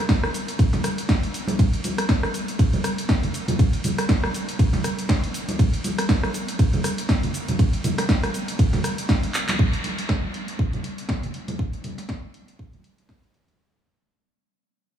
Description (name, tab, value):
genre	house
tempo	120 BPM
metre	4/4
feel	swing 57% on 16ths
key	none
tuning	none
part	electronic kick drum	drums	0.1-13.2 s	none	-20 LUFS	equal	none
part	punchy analog drum machine	drums	0.1-13.6 s	handclaps, hi-hat, ride cymbal, rim click, shaker, snare drum	-26 LUFS	equal	sidechain pumping on hats, sidechain pumping on perc, sidechain pumping on cymbals
part	tube shaker and congas	percussion	0.1-13.6 s	none	-28 LUFS	right 1 dB	sidechain pumping on perc, low-pass filter on perc
room	moderate huge ambient reverb, RT60 8.6 s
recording	studio ambience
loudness	-20 LUFS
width	side -9 dB against mid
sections	0.0-9.6 A section; 9.6-13.6 B section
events	drop 0.0-9.6; drum fill 9.3; band accent 9.5; fade-out 9.6-13.6; filter sweep on drum 9.6-13.6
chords	none